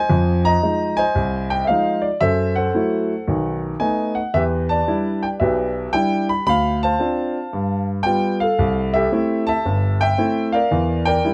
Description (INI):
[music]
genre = solo jazz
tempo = 113 BPM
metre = 4/4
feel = swing 67% on 8ths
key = C major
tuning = A4 = 442 Hz
[part]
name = warm grand piano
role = solo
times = 0.0-11.3 s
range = G1 to B5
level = -20 LUFS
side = equal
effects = none
[sound]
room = little or no reverb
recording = close, detailed microphones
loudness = -20 LUFS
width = mono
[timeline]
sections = 0.0-11.3 A section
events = none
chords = 0.1 Fm7; 2.2 F#m7b5; 3.3 B7; 4.3 Em7; 6.5 Dm7; 7.5 G7; 8.6 C6; 10.7 Em7b5